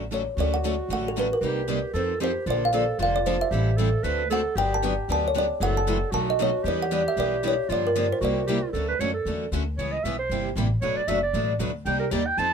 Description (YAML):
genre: acoustic string swing (jazz manouche)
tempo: 230 BPM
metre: 4/4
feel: swing 56% on 8ths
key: D major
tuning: A4 = 441 Hz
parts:
  - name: kalimba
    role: melody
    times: 0.0-8.6 s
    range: A4 to A5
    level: -26 LUFS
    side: equal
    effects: none
  - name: picked steel-string acoustic guitar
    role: accompaniment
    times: 0.0-12.5 s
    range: B2 to A4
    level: -30 LUFS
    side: left 6 dB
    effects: none
  - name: picked steel-string acoustic guitar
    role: accompaniment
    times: 0.0-12.5 s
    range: B2 to B4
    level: -32 LUFS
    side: right 8 dB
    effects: none
  - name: upright bass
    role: bass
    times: 0.0-12.5 s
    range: F1 to G2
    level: -29 LUFS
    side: left 1 dB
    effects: none
  - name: breathy clarinet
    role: second line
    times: 0.4-12.5 s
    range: F4 to A5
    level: -29 LUFS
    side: right 3 dB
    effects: none
room: light reverb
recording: minimal, uncompressed stereo recording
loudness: -22 LUFS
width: side -7 dB against mid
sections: 0.4-8.7 A section; 8.7-12.5 B section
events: clarinet solo 8.7-12.5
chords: 0.4 Dmaj7; 1.4 Cm7; 1.9 F7; 2.5 Bbmaj7; 3.5 Am7; 4.0 D7; 4.6 Gmaj7; 5.6 F#m7b5; 6.1 B7; 6.6 Em7; 7.7 Gm7; 8.2 C9; 8.7 Dmaj7; 9.8 C#m7b5; 10.3 C7; 10.8 Bm7; 11.9 Cm7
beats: 0.10 | 0.37 0.63 0.89 1.15 | 1.42 1.68 1.94 2.20 | 2.46 2.73 2.99 3.25 | 3.51 3.77 4.03 4.29 | 4.56 4.82 5.08 5.34 | 5.60 5.86 6.12 6.38 | 6.64 6.91 7.17 7.43 | 7.69 7.95 8.21 8.47 | 8.73 8.99 9.25 9.51 | 9.78 10.04 10.30 10.56 | 10.82 11.08 11.34 11.60 | 11.86 12.12 12.38